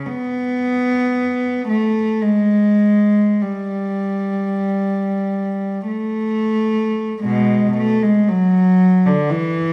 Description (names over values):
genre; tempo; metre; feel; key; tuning
classical, free, expressive piece for unaccompanied cello; 38-60 BPM; 3/4; rubato; unclear; A4 = 440 Hz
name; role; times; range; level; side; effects
rich cello; solo; 0.0-9.7 s; B2 to B3; -18 LUFS; equal; none
room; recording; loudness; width
wet stone room reverb, RT60 1.2 s; none; -18 LUFS; mono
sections
0.0-7.2 A section; 7.2-9.7 B section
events
none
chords
none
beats
| 0.10 1.18 2.25 | 3.43 4.65 5.87 | 7.22 8.29 9.30